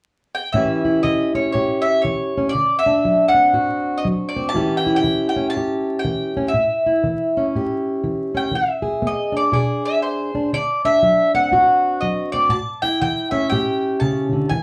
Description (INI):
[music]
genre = acoustic country blues, solo or duo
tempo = 120 BPM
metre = 4/4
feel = swing 62% on 8ths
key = A mixolydian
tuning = A4 = 437 Hz
[part]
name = mandolin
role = melody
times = 0.3-14.6 s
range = C5 to A5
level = -21 LUFS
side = equal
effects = none
[part]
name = fingerpicked plugged-in steel-string acoustic guitar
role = accompaniment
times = 0.5-14.6 s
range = A2 to G#4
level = -23 LUFS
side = equal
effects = none
[sound]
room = wet studio ambience, RT60 0.5 s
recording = heard from further back in the room, vinyl crackle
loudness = -19 LUFS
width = mono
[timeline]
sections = 0.5-14.6 A section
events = none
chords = 0.0 N.C.; 0.5 A7; 2.5 D7; 4.5 A7; 8.5 E7; 10.5 D7; 12.5 A7